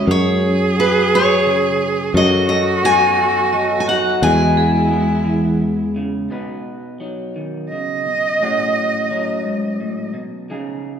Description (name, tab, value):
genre	acoustic folk-pop ballad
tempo	58 BPM (dotted quarters)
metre	6/8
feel	straight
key	unclear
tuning	A4 = 440 Hz
part	picked steel-string acoustic guitar	melody	0.0-5.6 s	B4 to G#5	-18 LUFS	left 2 dB	none
part	rich cello	second line	0.0-10.1 s	E4 to D#5	-20 LUFS	right 4 dB	none
part	electric guitar through a small old amp	accompaniment	0.0-11.0 s	G#2 to B4	-22 LUFS	equal	none
part	vibraphone with hard mallets	arpeggios	0.0-0.4, 3.5-6.1 s	C#4 to D#5	-25 LUFS	right 4 dB	none
part	sustaining fretless electric bass	bass	0.0-6.3 s	E2 to F#2	-20 LUFS	left 1 dB	none
room	wet scoring stage reverb, RT60 1.9 s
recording	minimal, uncompressed stereo recording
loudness	-14 LUFS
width	side -8 dB against mid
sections	0.0-6.3 A section; 6.3-11.0 B section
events	cello solo 6.3-11.0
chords	0.1 F#sus2; 2.1 B7/F#; 4.2 Eadd9; 6.3 Badd9; 8.4 F#madd9/A